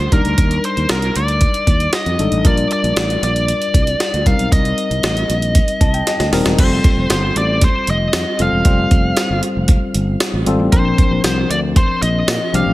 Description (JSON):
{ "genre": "1980s-style pop", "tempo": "116 BPM", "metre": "4/4", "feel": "straight", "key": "F mixolydian", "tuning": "A4 = 440 Hz", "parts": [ { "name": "biting lead guitar", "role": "melody", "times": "0.0-12.7 s", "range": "Bb4 to F5", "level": "-20 LUFS", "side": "equal", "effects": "overdrive, tape echo" }, { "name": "tine electric piano", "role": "accompaniment", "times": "0.0-12.7 s", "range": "F3 to A5", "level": "-20 LUFS", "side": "left 2 dB", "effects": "none" }, { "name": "sustaining fretless electric bass", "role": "bass", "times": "0.0-12.7 s", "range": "Eb1 to Bb2", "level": "-19 LUFS", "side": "equal", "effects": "none" }, { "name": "jungle sampler-style drum kit", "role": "drums", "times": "0.1-12.7 s", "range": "crash cymbal, hi-hat, kick drum, snare drum, tambourine", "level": "-16 LUFS", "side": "equal", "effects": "gated reverb" } ], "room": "digital ambience", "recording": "none", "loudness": "-13 LUFS", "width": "side -17 dB against mid", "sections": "0.0-6.6 A section; 6.6-12.7 B section", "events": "tine electric piano fill 5.6-6.6; drum fill 6.1-6.6", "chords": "0.1 Ebmaj7; 2.4 Bb6; 4.3 Cm7; 6.6 Fadd9; 10.7 Bbadd9" }